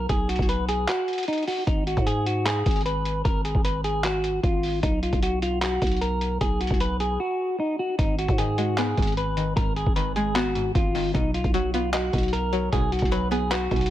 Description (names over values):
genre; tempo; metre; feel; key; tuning
hip hop, trap; 152 BPM; 4/4; half-time; unclear; A4 = 440 Hz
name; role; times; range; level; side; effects
clean electric guitar; melody; 0.0-13.9 s; D#4 to B4; -26 LUFS; equal; ping-pong delay
growling 808-style bass; bass; 0.0-13.9 s; G#1 to G#2; -27 LUFS; equal; none
lo-fi sampler-style drum kit; drums; 0.1-13.9 s; handclaps, hi-hat, kick drum; -26 LUFS; equal; vintage 12-bit sampler grit
string-like resonator pluck; accompaniment; 8.0-13.9 s; G#2 to D#5; -29 LUFS; left 1 dB; chorus, phaser
room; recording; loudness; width
light reverb; none; -22 LUFS; side -13 dB against mid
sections
0.0-13.9 A section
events
kick muted 0.9-1.7; break 7.2-8.0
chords
0.0 B5; 1.7 N.C.; 4.8 B5; 8.0 G#m; 11.1 B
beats
| 0.09 0.49 0.88 1.28 | 1.67 2.07 2.46 2.86 | 3.25 3.65 4.04 4.44 | 4.83 5.22 5.62 6.01 | 6.41 6.80 7.20 7.59 | 7.99 8.38 8.78 9.17 | 9.57 9.96 10.36 10.75 | 11.15 11.54 11.94 12.33 | 12.72 13.12 13.52